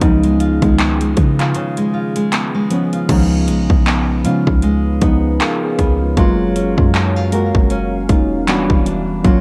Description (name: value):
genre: contemporary R&B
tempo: 78 BPM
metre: 4/4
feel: swing 58% on 16ths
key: unclear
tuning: A4 = 440 Hz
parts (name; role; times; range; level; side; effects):
- muted felt-like synth keys; accompaniment; 0.0-9.4 s; D#3 to A#4; -20 LUFS; equal; chorus
- nylon-string guitar; arpeggios; 0.0-9.4 s; G#2 to A#4; -23 LUFS; equal; tape echo
- clean 808-style bass; bass; 0.0-9.4 s; E1 to C#3; -21 LUFS; equal; none
- trap drum kit; drums; 0.0-9.4 s; crash cymbal, handclaps, hi-hat, kick drum; -19 LUFS; equal; cassette tape
- deep dark ambient pad; sustained chords; 4.2-9.4 s; F#3 to E#5; -28 LUFS; equal; chorus, built-in reverb
room: light reverb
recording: home recording on cassette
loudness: -15 LUFS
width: mono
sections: 0.0-3.1 A section; 3.1-9.4 B section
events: break 1.6-3.1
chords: 0.0 C#7; 6.2 F#maj7; 8.5 Em9